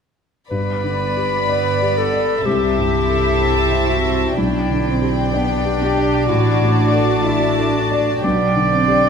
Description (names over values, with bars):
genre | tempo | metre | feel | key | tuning
cinematic, emotional film score for orchestra | 63 BPM | 4/4 | rubato | G major | A4 = 442 Hz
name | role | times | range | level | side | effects
warm symphonic violin section | melody | 0.5-9.1 s | G5 to B5 | -26 LUFS | left 4 dB | none
clear clarinet | second line | 0.5-9.1 s | D4 to D5 | -20 LUFS | equal | none
clear studio violin section | second line | 0.5-9.1 s | D5 to E5 | -24 LUFS | left 3 dB | none
dark concert grand piano | accompaniment | 0.5-9.1 s | A1 to E5 | -21 LUFS | left 2 dB | none
warm studio viola section | accompaniment | 0.5-9.1 s | B3 to D4 | -25 LUFS | right 2 dB | none
dark symphonic double bass section | bass | 0.5-9.1 s | G1 to C2 | -24 LUFS | right 4 dB | none
warm chamber cello section | bass | 2.5-9.1 s | B3 to G4 | -23 LUFS | right 3 dB | none
room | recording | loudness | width
moderate scoring stage reverb, RT60 1.6 s | minimal, uncompressed stereo recording | -15 LUFS | side -6 dB against mid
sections
0.5-9.1 A section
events
none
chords
0.5 G; 2.5 C6; 4.4 G/B; 6.3 D/A; 8.2 G/B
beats
| 0.51 1.49 2.46 3.42 | 4.37 5.33 6.29 7.24 | 8.23